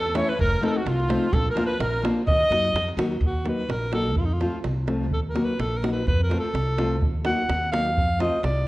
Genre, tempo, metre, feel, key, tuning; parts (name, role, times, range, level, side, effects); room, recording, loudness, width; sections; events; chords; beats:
balkan folk, Balkan wedding band; 127 BPM; 2/4; swing 54% on 16ths; Eb hungarian minor; A4 = 441 Hz
clear alto saxophone; melody; 0.0-8.7 s; Eb4 to Gb5; -26 LUFS; equal
bright trumpet; second line; 0.0-2.9 s; F4 to Eb5; -32 LUFS; right 1 dB
upright bass; bass; 0.0-8.7 s; F1 to Gb2; -26 LUFS; equal
nylon-string guitar; accompaniment; 0.1-8.4 s; E3 to Gb4; -28 LUFS; left 2 dB
davul; percussion; 0.1-8.6 s; -29 LUFS; right 1 dB
moderate recital hall reverb, RT60 1.5 s; worn, warbling old tape, cassette tape, warbly pitch drift; -21 LUFS; side -18 dB against mid
0.0-3.2 A section; 3.2-8.7 B section
alto saxophone solo 3.2-8.7
0.4 F7; 1.3 Bb; 2.3 Ebm; 4.2 F; 5.1 Ebm; 6.1 F; 7.0 Ebm; 8.0 F
| 0.39 0.86 | 1.33 1.80 | 2.27 2.74 | 3.22 3.69 | 4.17 4.64 | 5.12 5.59 | 6.07 6.54 | 7.02 7.49 | 7.97 8.44